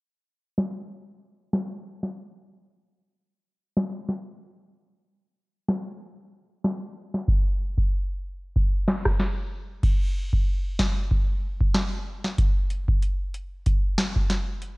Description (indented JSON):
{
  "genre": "dancehall",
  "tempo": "94 BPM",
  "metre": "4/4",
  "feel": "swing 56% on 16ths",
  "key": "none",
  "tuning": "none",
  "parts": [
    { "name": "booming analog drum machine", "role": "drums", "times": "0.6-14.8 s", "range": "crash cymbal, hi-hat, kick drum, rim click, snare drum", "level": "-23 LUFS", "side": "equal", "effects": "none" }
  ],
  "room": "little or no reverb",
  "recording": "worn, warbling old tape, cassette tape, warbly pitch drift, low-pass filter",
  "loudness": "-24 LUFS",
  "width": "side -26 dB against mid",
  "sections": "0.0-9.8 A section; 9.8-14.8 B section",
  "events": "filter sweep 0.0-9.8",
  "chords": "none"
}